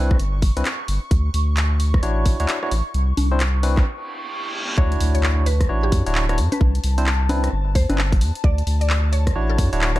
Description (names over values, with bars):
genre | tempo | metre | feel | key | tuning
UK garage, two-step garage | 131 BPM | 4/4 | swing 62% on 16ths | D major | A4 = 440 Hz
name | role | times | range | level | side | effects
ethereal airy pad | sustained chords | 0.0-10.0 s | A5 to C#6 | -33 LUFS | left 1 dB | ensemble chorus, built-in reverb, phaser, sidechain pumping
barky tine electric piano | stabs | 0.0-10.0 s | C4 to C#5 | -26 LUFS | equal | medium stereo tremolo, ping-pong delay
saturated sub bass | bass | 0.0-10.0 s | D1 to F#2 | -19 LUFS | equal | tube saturation
electronic kick drum | drums | 0.1-9.7 s | none | -18 LUFS | equal | none
punchy analog drum machine | drums | 0.1-10.0 s | congas, handclaps, hi-hat, rim click | -26 LUFS | left 1 dB | none
reverse cymbal and impact | sound effects | 4.1-6.6 s | none | -30 LUFS | right 1 dB | none
mallet-like synth pluck | melody | 4.8-9.6 s | G4 to D5 | -31 LUFS | equal | analog chorus, ping-pong delay
room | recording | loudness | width
digital ambience | dark, warm production | -17 LUFS | side -16 dB against mid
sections
0.0-4.8 A section; 4.8-10.0 B section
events
break 3.9-4.8; reverse cymbal 4.1-4.8; drop 4.8-10.0; impact 4.8-6.6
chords
0.0 Cmaj9; 1.1 Dmaj9; 2.9 Cadd9; 4.8 Dmaj9; 6.6 Cmaj9; 8.4 Dmaj9